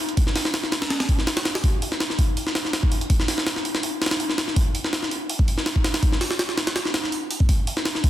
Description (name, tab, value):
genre	drum and bass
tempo	164 BPM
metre	4/4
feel	straight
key	none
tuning	none
part	jungle sampler-style drum kit	drums	0.1-8.1 s	hi-hat, kick drum, snare drum	-20 LUFS	equal	none
room	light reverb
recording	dense, heavily limited modern master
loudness	-20 LUFS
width	side -13 dB against mid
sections	0.0-8.1 A section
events	none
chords	none